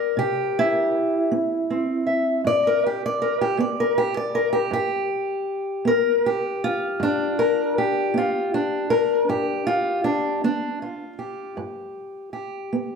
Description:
acoustic country blues, solo or duo; 53 BPM (dotted quarters); 12/8; straight; G mixolydian; A4 = 441 Hz
fingerpicked steel-string acoustic guitar; solo; 0.0-13.0 s; G2 to E5; -21 LUFS; equal
wet recital hall reverb, RT60 1.4 s; -20 LUFS; side -5 dB against mid
0.0-13.0 A section
0.0 C7; 2.5 G7
0.17 1.31 | 2.45 3.59 4.73 5.87 | 7.01 8.15 9.30 10.44 | 11.58 12.72

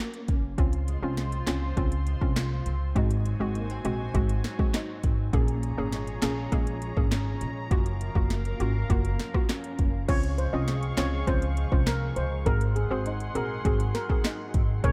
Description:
dancehall; 101 BPM; 4/4; straight; Db major; A4 = 440 Hz
hollow square pluck; accompaniment; 0.0-14.9 s; Ab3 to Bb4; -36 LUFS; equal; chorus
nylon-string guitar; arpeggios; 0.0-14.9 s; Gb2 to F4; -40 LUFS; equal; ensemble chorus, tape echo
afro-pop drum kit; drums; 0.1-14.9 s; crash cymbal, handclaps, hi-hat, kick drum, rim click, snare drum; -30 LUFS; equal
upright bass; bass; 0.3-14.9 s; Gb1 to Db2; -31 LUFS; equal
warm studio string section; sustained chords; 0.6-14.9 s; F4 to Db6; -42 LUFS; equal; sidechain pumping
steel pan; melody; 10.1-14.9 s; Ab4 to Eb5; -35 LUFS; equal; tape echo
light reverb, small room ambience; -27 LUFS; mono
0.6-10.1 A section; 10.1-14.9 B section
0.0 Gbmaj7; 0.6 Dbmaj7; 3.0 Ab7; 5.3 Bbm7; 7.7 Gbmaj7; 10.1 Dbmaj7; 12.5 Ab7
| 0.58 1.18 1.77 2.36 | 2.96 3.55 4.15 4.74 | 5.33 5.93 6.52 7.12 | 7.71 8.30 8.90 9.49 | 10.09 10.68 11.28 11.87 | 12.46 13.06 13.65 14.24 | 14.84

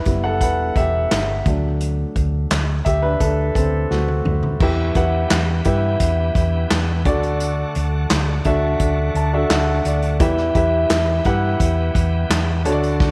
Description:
piano-driven pop; 86 BPM; 4/4; straight; A4 = 439 Hz
warm concert grand piano; accompaniment; 0.0-13.1 s; D3 to A5; -23 LUFS; equal
hollow-body short-scale fingered electric bass; bass; 0.1-13.1 s; E1 to G2; -23 LUFS; equal
unplugged drum kit; drums; 0.1-13.1 s; crash cymbal, handclaps, hi-hat, kick drum, snare drum, toms; -24 LUFS; equal
bright tonewheel organ; sustained chords; 4.6-13.1 s; D3 to G4; -34 LUFS; equal; overdrive, fast rotary speaker
moderate echo chamber reverb, RT60 2.3 s; -19 LUFS; mono
0.0-4.6 A section; 4.6-13.1 B section
grand piano solo 0.0-4.6; drum fill 3.9-4.6; grand piano fill 8.8-10.2
0.0 Em; 1.5 D; 4.6 Em; 7.1 D; 10.2 Em
0.41 1.11 | 1.81 2.51 3.21 3.91 | 4.61 5.31 6.01 6.71 | 7.41 8.11 8.80 9.50 | 10.20 10.90 11.60 12.30 | 13.00

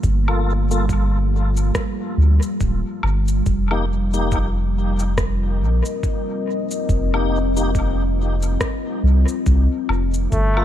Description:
ambient dub; 70 BPM; 4/4; swing 58% on 16ths; A4 = 441 Hz
deep dark ambient pad; sustained chords; 0.0-10.6 s; G3 to Eb5; -24 LUFS; left 1 dB; chorus, built-in reverb
soft dub sub bass; bass; 0.0-10.6 s; D1 to D2; -18 LUFS; equal
electronic cabasa, woodblock and rim click; drums; 0.0-10.6 s; -30 LUFS; left 2 dB; dub echo
electronic kick drum; drums; 0.0-10.5 s; -23 LUFS; equal
tonewheel organ; stabs; 0.3-10.6 s; Bb3 to A4; -28 LUFS; left 3 dB; chorus vibrato, fast rotary speaker, low-pass filter, dub echo
brilliant trombone; melody; 10.3-10.6 s; A3; -21 LUFS; left 1 dB
little or no reverb; -17 LUFS; side -11 dB against mid
0.0-10.6 A section
filter sweep on tonewheel organ 0.0-10.6
0.0 Gm9; 3.5 F9sus4
| 0.03 0.89 1.75 2.61 | 3.46 4.32 5.18 6.03 | 6.89 7.75 8.61 9.46 | 10.32

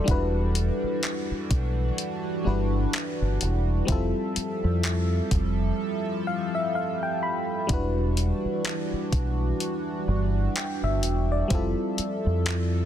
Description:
contemporary R&B; 63 BPM; 4/4; swing 58% on 16ths; A4 = 440 Hz
FM electric piano; accompaniment; 0.0-12.9 s; G3 to B5; -29 LUFS; left 3 dB; chorus
chorused pulse-width pad; sustained chords; 0.0-12.9 s; E3 to E5; -31 LUFS; right 3 dB
deep dub fingered electric bass; bass; 0.1-12.8 s; E1 to F2; -25 LUFS; equal
clean 12-bit digital drum machine; drums; 0.1-12.7 s; handclaps, hi-hat, kick drum; -28 LUFS; equal
digital ambience; dense, heavily limited modern master; -24 LUFS; side -10 dB against mid
0.0-12.9 A section
break 5.8-7.7; FM electric piano fill 5.8-7.7
0.1 Em9; 3.9 Fmaj9; 7.7 Em9; 11.5 Fmaj9
| 0.08 1.03 1.98 2.94 | 3.89 4.84 5.79 6.75 | 7.70 8.65 9.60 10.55 | 11.51 12.46

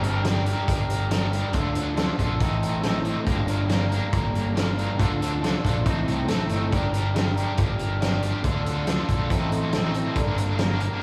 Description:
indie rock; 139 BPM; 4/4; straight; G minor; A4 = 441 Hz
crunchy overdriven guitar; riff; 0.0-11.0 s; G2 to Bb4; -29 LUFS; equal; harmonic tremolo, slapback echo
overdriven picked electric bass; bass; 0.0-10.9 s; G1 to D2; -29 LUFS; equal
loose indie drum kit; drums; 0.0-10.9 s; hi-hat, kick drum, snare drum; -29 LUFS; equal
moderate lush hall reverb, RT60 1.9 s, small room ambience; big arena sound, small room reverb; -24 LUFS; mono
0.0-11.0 A section
0.0 Gm; 1.5 Dm; 2.4 Adim; 3.3 Gm; 5.0 Dm; 5.9 Adim; 6.7 Gm; 8.4 Dm; 9.3 Adim; 10.2 Gm
0.24 0.67 1.10 | 1.53 1.97 2.40 2.83 | 3.27 3.70 4.13 4.56 | 5.00 5.43 5.86 6.29 | 6.72 7.15 7.58 8.01 | 8.44 8.87 9.30 9.73 | 10.15 10.58 11.01

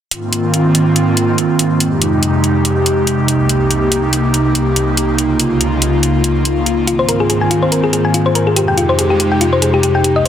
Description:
future bass; 142 BPM; 4/4; swing 55% on 16ths, half-time; Ab major; A4 = 440 Hz
airy breathy pad; sustained chords; 0.1-10.3 s; C2 to G4; -13 LUFS; equal; chorus
electronic hi-hat; drums; 0.1-10.3 s; -17 LUFS; left 1 dB
thumb-piano-like synth pluck; arpeggios; 6.9-10.3 s; F4 to Ab5; -14 LUFS; left 3 dB; chorus, cassette tape, dub echo
moderate lush hall reverb, RT60 2.2 s; dense, heavily limited modern master; -12 LUFS; side -10 dB against mid
0.1-10.3 A section
0.1 Ab69; 1.8 Fm9; 3.3 Cm7; 5.2 Db69; 6.9 Ab69; 8.6 Fm9
| 0.11 0.54 0.96 1.38 | 1.80 2.23 2.65 3.07 | 3.49 3.92 4.34 4.76 | 5.18 5.61 6.03 6.45 | 6.87 7.30 7.72 8.14 | 8.56 8.99 9.41 9.83 | 10.26

